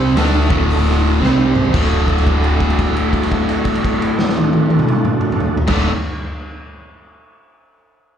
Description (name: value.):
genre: blues rock power trio and southern rock.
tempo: 114 BPM.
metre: 4/4.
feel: swing 64% on 8ths.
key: D mixolydian.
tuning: A4 = 440 Hz.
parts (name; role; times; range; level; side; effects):
overdriven tonewheel organ; sustained chords; 0.0-5.9 s; G3 to C5; -24 LUFS; right 6 dB; chorus vibrato, fast rotary speaker.
cranked stack guitar; riff; 0.0-5.9 s; D2 to D4; -17 LUFS; left 1 dB; overdrive, spring reverb, slapback echo.
vintage muted fingered electric bass; bass; 0.0-5.9 s; D1 to D2; -18 LUFS; equal; none.
raw garage drum kit; drums; 0.2-5.8 s; crash cymbal, hi-hat, kick drum, snare drum, toms; -19 LUFS; equal; none.
room: little or no reverb.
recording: live gig heard through the venue's PA, club reverb.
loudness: -13 LUFS.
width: side -9 dB against mid.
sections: 0.0-1.7 A section; 1.7-5.9 B section.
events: drum fill 1.2-1.7; held note 1.7-5.6.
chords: 0.2 D; 1.2 C5; 1.7 D.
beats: 0.16 0.68 1.21 | 1.73 2.26 2.79 3.31 | 3.84 4.36 4.89 5.42.